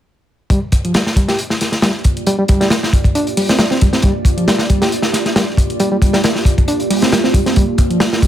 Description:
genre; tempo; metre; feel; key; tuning
breakbeat, breaks; 136 BPM; 4/4; swing 54% on 16ths; G minor; A4 = 440 Hz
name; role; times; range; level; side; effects
deep dark ambient pad; sustained chords; 1.4-8.3 s; Bb3 to D5; -21 LUFS; right 2 dB; chorus, built-in reverb, sidechain pumping
reed electric piano; riff; 0.5-8.3 s; F3 to G4; -18 LUFS; equal; fast tremolo, tube saturation, low-pass filter, tape echo
crunchy breakbeat drum kit; drums; 0.5-8.3 s; hi-hat, kick drum, snare drum; -14 LUFS; equal; none
electronic hi-hat; drums; 0.5-8.3 s; none; -30 LUFS; left 1 dB; none
room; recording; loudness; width
light reverb; none; -12 LUFS; side -11 dB against mid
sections
0.5-8.3 A section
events
none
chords
0.5 Gm7

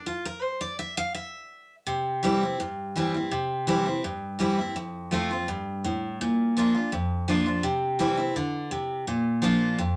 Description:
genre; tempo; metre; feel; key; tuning
bluegrass; 167 BPM; 4/4; straight; C mixolydian; A4 = 440 Hz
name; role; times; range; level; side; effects
picked steel-string acoustic guitar; solo; 0.0-10.0 s; F2 to F5; -27 LUFS; equal; none
room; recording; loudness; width
moderate studio reverb, RT60 0.5 s; none; -27 LUFS; mono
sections
0.0-1.9 A section; 1.9-10.0 B section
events
steel-string acoustic guitar solo 0.0-1.9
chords
0.0 N.C.; 1.9 C; 4.8 F; 6.2 Bb; 7.6 C; 9.1 Bb

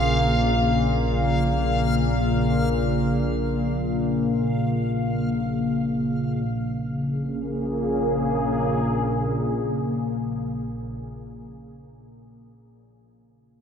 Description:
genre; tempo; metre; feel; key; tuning
ambient; free time; none; none; Bb minor; A4 = 439 Hz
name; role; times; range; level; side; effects
sweeping resonant pad; sustained chords; 0.0-11.2 s; Db3 to Ab4; -26 LUFS; right 1 dB; chorus
analog drone; drone; 0.0-10.9 s; Bb1 to Bb2; -24 LUFS; left 1 dB; chorus
backwards swelling texture; texture; 0.0-6.5 s; F5; -29 LUFS; left 1 dB; built-in reverb
room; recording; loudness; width
wet cathedral reverb, RT60 5.4 s; none; -21 LUFS; side -7 dB against mid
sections
0.0-6.5 A section; 6.5-10.4 B section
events
none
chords
0.0 Bbm7

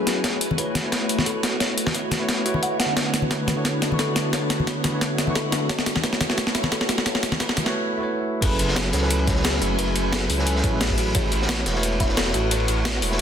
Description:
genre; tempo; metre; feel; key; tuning
liquid drum and bass; 176 BPM; 4/4; swing 54% on 16ths; A major; A4 = 440 Hz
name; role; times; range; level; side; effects
bell-like tine electric piano; accompaniment; 0.0-13.2 s; D3 to C#6; -27 LUFS; right 1 dB; vintage 12-bit sampler grit, dub echo
glassy FM pad; sustained chords; 0.0-13.2 s; A3 to C#6; -31 LUFS; left 1 dB; ensemble chorus, built-in reverb, sidechain pumping
kalimba; arpeggios; 0.0-13.0 s; F#4 to F#5; -30 LUFS; left 2 dB; low-pass filter, digital delay
breakbeat sampler-style drum kit; drums; 0.1-13.1 s; crash cymbal, hi-hat, snare drum; -24 LUFS; equal; none
electronic kick drum; drums; 0.2-12.1 s; none; -27 LUFS; right 1 dB; high-pass filter on kick
congas; percussion; 0.5-7.6 s; none; -28 LUFS; left 3 dB; none
swelling detuned saw bass; bass; 8.4-13.2 s; E1 to C#2; -25 LUFS; right 1 dB; none
crunchy breakbeat drum kit; drums; 8.4-13.2 s; hi-hat, ride cymbal, snare drum; -28 LUFS; right 1 dB; high-pass filter on cymbals, high-pass filter on hats, high-pass filter on snare, high-pass filter on room
room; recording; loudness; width
moderate recital hall reverb, RT60 1.5 s, small room ambience; dense, heavily limited modern master; -20 LUFS; side -8 dB against mid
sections
0.0-8.4 A section; 8.4-13.2 B section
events
build-up 0.0-8.4; drum fill 0.0-7.7; break 7.7-8.4; drop 8.4-13.2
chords
0.2 Dmaj13; 5.7 A69; 8.4 F#m11; 11.2 A69

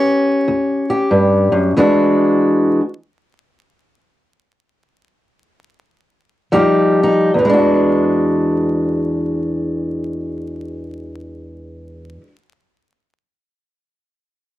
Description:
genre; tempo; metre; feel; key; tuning
blues; 70-96 BPM; 4/4; swing 65% on 8ths; E mixolydian; A4 = 440 Hz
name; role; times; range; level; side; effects
fingerpicked steel-string acoustic guitar; solo; 0.0-12.3 s; E2 to G4; -14 LUFS; equal; none
room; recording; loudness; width
moderate booth ambience, RT60 0.3 s; home recording on cassette, vinyl crackle; -13 LUFS; side -15 dB against mid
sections
0.0-7.3 A section; 7.3-10.8 B section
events
slowing down 1.7-7.3; stop 1.7-6.5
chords
0.0 A7 (rootless); 1.7 E9; 6.5 Fsus2; 7.3 E9

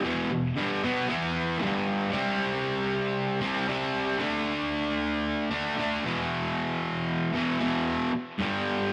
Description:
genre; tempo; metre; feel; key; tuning
rock; 115 BPM; 4/4; straight; E minor; A4 = 444 Hz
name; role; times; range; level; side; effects
distorted electric guitar; solo; 0.0-8.9 s; E2 to E4; -28 LUFS; equal; distortion, tape echo
room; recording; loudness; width
moderate studio reverb, RT60 0.5 s; rough rehearsal-room recording; -28 LUFS; mono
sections
0.0-2.1 A section; 2.1-8.9 B section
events
none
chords
0.0 Em; 1.6 G5; 2.1 C5; 4.2 D5; 6.0 E5; 8.4 G5

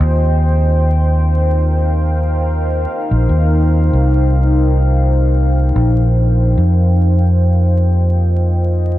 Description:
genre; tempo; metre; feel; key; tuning
ambient dub; 73 BPM; 4/4; swing 56% on 16ths; unclear; A4 = 440 Hz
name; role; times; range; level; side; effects
deep dark ambient pad; sustained chords; 0.0-9.0 s; Eb4 to Ab5; -20 LUFS; left 1 dB; chorus, built-in reverb, vintage 12-bit sampler grit
fingered electric bass; bass; 0.0-9.0 s; Bb1 to F2; -12 LUFS; equal; none
room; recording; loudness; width
light reverb; vinyl crackle; -12 LUFS; side -15 dB against mid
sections
0.0-6.6 A section; 6.6-9.0 B section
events
none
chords
0.0 Eb69; 6.6 Fm9

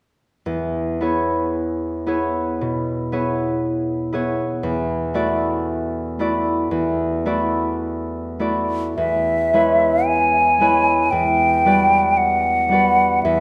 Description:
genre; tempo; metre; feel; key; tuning
classical, impressionist duo for flute and harp; 56 BPM; 4/4; uneven beats, rubato; unclear; A4 = 440 Hz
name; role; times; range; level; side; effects
concert harp; accompaniment; 0.5-13.4 s; E2 to D5; -22 LUFS; equal; none
hollow concert flute; melody; 9.0-13.4 s; E5 to G#5; -18 LUFS; equal; none
room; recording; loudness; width
wet concert hall reverb, RT60 1.8 s; none; -20 LUFS; mono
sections
0.5-9.0 A section; 9.0-13.4 B section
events
none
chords
0.5 E6; 4.6 Dadd9/E; 9.0 E6; 11.1 Gmaj7/E

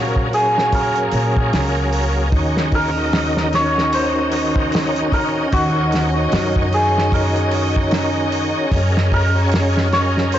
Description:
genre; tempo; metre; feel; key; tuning
trip hop; 75 BPM; 4/4; swing 59% on 16ths; Eb dorian; A4 = 439 Hz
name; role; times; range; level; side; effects
santur; melody; 0.0-10.4 s; Gb4 to Db5; -21 LUFS; equal; tape echo
bright tonewheel organ; accompaniment; 0.0-10.4 s; Eb3 to Eb5; -21 LUFS; equal; overdrive, chorus vibrato, fast rotary speaker, harmonic tremolo
warm studio violin section; sustained chords; 0.0-10.4 s; Bb3 to Eb5; -25 LUFS; right 1 dB; none
upright bass; bass; 0.0-10.4 s; Db2 to Bb2; -21 LUFS; equal; none
warm soul drum kit; drums; 0.2-10.4 s; hi-hat, kick drum, snare drum; -22 LUFS; equal; vintage 12-bit sampler grit
room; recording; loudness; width
light reverb, small room ambience; blown-out, overdriven recording, vinyl crackle, overdrive, nothing above 7.8 kHz; -15 LUFS; side -11 dB against mid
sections
0.0-10.4 A section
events
none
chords
0.0 Gbadd9; 2.3 Ebm7; 8.7 Gbadd9

